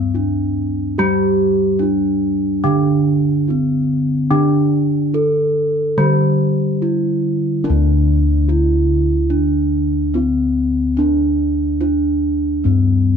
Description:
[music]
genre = Javanese gamelan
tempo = 72 BPM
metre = 4/4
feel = straight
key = D slendro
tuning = A4 = 440 Hz
[part]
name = gamelan-type bronze metallophone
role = melody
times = 0.0-13.2 s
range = C4-40c to A4+20c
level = -18 LUFS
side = right 2 dB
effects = none
[part]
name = gamelan-type bronze metallophone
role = accompaniment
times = 0.0-7.6 s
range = D3 to C4-40c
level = -20 LUFS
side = left 3 dB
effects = none
[part]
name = gamelan-type bossed gongs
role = bass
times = 0.0-13.2 s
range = D2 to G4-20c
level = -18 LUFS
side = left 1 dB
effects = none
[sound]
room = light reverb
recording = dark, warm production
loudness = -14 LUFS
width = side -7 dB against mid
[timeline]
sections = 0.0-7.6 A section; 7.6-13.2 A section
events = none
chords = none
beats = 0.15 | 0.98 1.81 2.65 3.48 | 4.31 5.15 5.98 6.81 | 7.65 8.48 9.31 10.15 | 10.98 11.81 12.65

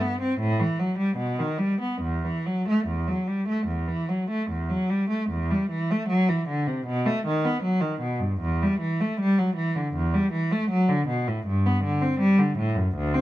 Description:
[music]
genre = classical, baroque-style suite movement for unaccompanied cello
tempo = 65-82 BPM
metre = 4/4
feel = rubato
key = E minor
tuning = A4 = 440 Hz
[part]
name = clear cello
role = solo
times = 0.0-13.2 s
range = D2 to C4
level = -22 LUFS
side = equal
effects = none
[sound]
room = light reverb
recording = minimal, uncompressed stereo recording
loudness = -23 LUFS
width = side -15 dB against mid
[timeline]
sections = 0.0-5.3 A section; 5.3-13.2 B section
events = none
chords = none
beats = 0.40 1.17 | 2.02 2.88 3.69 4.50 | 5.31 6.11 6.87 7.62 | 8.42 9.20 9.95 10.71 | 11.46 12.20 12.95

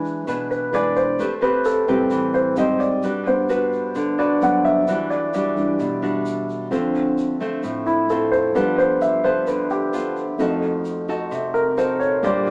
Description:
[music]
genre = bossa nova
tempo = 131 BPM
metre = 4/4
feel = straight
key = E minor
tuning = A4 = 439 Hz
[part]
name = nylon-string guitar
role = accompaniment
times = 0.0-12.5 s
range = A2 to B#4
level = -27 LUFS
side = equal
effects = none
[part]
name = warm baby grand piano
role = accompaniment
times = 0.0-12.5 s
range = F2 to F#5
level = -22 LUFS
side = equal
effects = none
[part]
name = egg shaker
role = percussion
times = 0.0-12.5 s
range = none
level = -52 LUFS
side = equal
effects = none
[sound]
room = wet studio reverb, RT60 0.5 s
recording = band playing live in one room, small speaker sound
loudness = -21 LUFS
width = mono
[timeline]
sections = 0.0-6.7 A section; 6.7-12.5 A section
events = grand piano solo 0.0-12.5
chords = 0.0 E7; 1.2 Am9; 2.6 G#maj7; 3.0 Gmaj7; 4.9 Em9; 6.7 Dm7; 8.6 G9; 10.4 F7b9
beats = 0.28 0.74 | 1.20 1.66 2.12 2.58 | 3.04 3.50 3.96 4.41 | 4.87 5.33 5.79 6.25 | 6.71 7.17 7.63 8.09 | 8.55 9.01 9.47 9.93 | 10.39 10.85 11.31 11.77 | 12.23

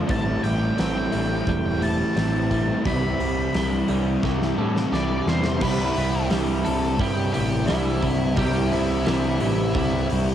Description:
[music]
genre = rock, shoegaze and dream pop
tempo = 87 BPM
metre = 4/4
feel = straight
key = C major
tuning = A4 = 441 Hz
[part]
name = direct-recorded clean electric guitar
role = arpeggios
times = 0.0-10.3 s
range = G3 to C4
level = -34 LUFS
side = right 7 dB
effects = lush chorus, cassette tape, analog delay
[part]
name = clean electric guitar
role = riff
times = 0.0-10.3 s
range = A2 to E4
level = -27 LUFS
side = right 6 dB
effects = reverse reverb, cassette tape
[part]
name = raw garage guitar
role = riff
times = 0.0-10.3 s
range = A2 to E4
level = -29 LUFS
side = equal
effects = overdrive, cassette tape
[part]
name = thick fuzz guitar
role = riff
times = 0.0-10.3 s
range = A2 to C4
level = -28 LUFS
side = left 8 dB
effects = distortion, wide subtle chorus, cassette tape
[part]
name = growling picked electric bass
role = bass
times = 0.0-10.3 s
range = E1 to A2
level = -26 LUFS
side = equal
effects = overdrive, tube saturation
[part]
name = octave-fuzz lead guitar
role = melody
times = 0.1-10.1 s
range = E4 to B5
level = -30 LUFS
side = left 1 dB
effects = distortion, cassette tape, analog delay
[part]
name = huge arena drum kit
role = drums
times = 0.1-10.3 s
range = crash cymbal, hi-hat, kick drum, snare drum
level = -28 LUFS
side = equal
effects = none
[sound]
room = small room ambience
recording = home recording on cassette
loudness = -20 LUFS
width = side -10 dB against mid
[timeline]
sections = 0.0-5.6 A section; 5.6-10.3 B section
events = drum fill 4.2-5.6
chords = 0.1 Am7; 2.9 Cmaj7; 5.6 C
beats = | 0.09 0.78 1.47 2.16 | 2.85 3.54 4.23 4.92 | 5.61 6.30 6.99 7.68 | 8.38 9.06 9.76

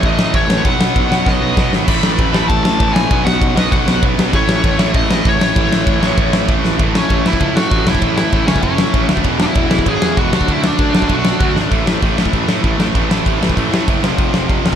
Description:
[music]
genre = punk rock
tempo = 195 BPM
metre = 4/4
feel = straight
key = A lydian, A major from 6.8 s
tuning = A4 = 440 Hz
[part]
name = smooth overdriven lead guitar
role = melody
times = 0.0-11.5 s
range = C#4 to B5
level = -19 LUFS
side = left 2 dB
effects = none
[part]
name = distorted electric guitar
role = riff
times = 0.0-14.8 s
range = E2 to D4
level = -21 LUFS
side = right 14 dB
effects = overdrive
[part]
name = high-gain distorted guitar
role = riff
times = 0.0-6.8, 9.2-14.8 s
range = E2 to D4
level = -24 LUFS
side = equal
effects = distortion
[part]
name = tight distorted guitar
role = riff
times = 0.0-14.8 s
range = E2 to D4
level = -22 LUFS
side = left 16 dB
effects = distortion
[part]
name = fuzz picked electric bass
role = bass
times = 0.0-14.8 s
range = E1 to A2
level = -20 LUFS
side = equal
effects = overdrive
[part]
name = big rock drum kit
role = drums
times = 0.0-14.8 s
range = crash cymbal, kick drum, ride cymbal, snare drum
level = -16 LUFS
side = equal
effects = none
[sound]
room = little or no reverb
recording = none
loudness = -12 LUFS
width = side -9 dB against mid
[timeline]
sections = 0.0-6.8 A section; 6.8-11.7 B section; 11.7-14.8 C section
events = drum fill 1.3-1.9, 6.6, 11.6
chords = 0.0 A; 0.6 B; 1.9 A5; 3.1 B5; 4.3 A; 9.3 E; 10.3 D; 11.7 A5; 14.0 F5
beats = 0.03 0.34 | 0.65 0.95 1.26 1.57 | 1.88 2.18 2.49 2.80 | 3.11 3.41 3.72 4.03 | 4.34 4.64 4.95 5.26 | 5.57 5.87 6.18 6.49 | 6.79 7.10 7.41 7.71 | 8.02 8.33 8.64 8.94 | 9.25 9.56 9.87 10.17 | 10.48 10.79 11.10 11.40 | 11.71 12.02 12.33 12.64 | 12.95 13.26 13.56 13.87 | 14.18 14.49

